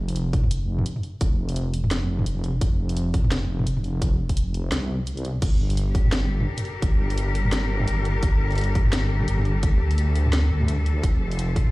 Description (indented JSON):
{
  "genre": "half-time drum and bass",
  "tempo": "171 BPM",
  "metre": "4/4",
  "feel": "swing 58% on 16ths, half-time",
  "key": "G minor",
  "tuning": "A4 = 439 Hz",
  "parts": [
    { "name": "deep soft wobble bass", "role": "bass", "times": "0.0-11.7 s", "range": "F1 to D2", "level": "-23 LUFS", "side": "equal", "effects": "chorus" },
    { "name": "drum and bass drum kit", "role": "drums", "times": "0.1-11.7 s", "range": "crash cymbal, hi-hat, snare drum, toms", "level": "-28 LUFS", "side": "equal", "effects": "small room reverb" },
    { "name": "electronic kick drum", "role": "drums", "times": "0.3-11.6 s", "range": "none", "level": "-22 LUFS", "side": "equal", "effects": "small room reverb" },
    { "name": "bright studio cello section", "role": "sustained chords", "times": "5.4-11.7 s", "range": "F3 to C5", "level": "-30 LUFS", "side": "left 4 dB", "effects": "sidechain pumping" }
  ],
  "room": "little or no reverb",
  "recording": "played on a big sound system in a bare room, large studio reverb",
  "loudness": "-21 LUFS",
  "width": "side -20 dB against mid",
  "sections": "0.0-11.7 A section",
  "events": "none",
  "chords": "0.0 F5; 5.4 Gmadd9; 11.0 F"
}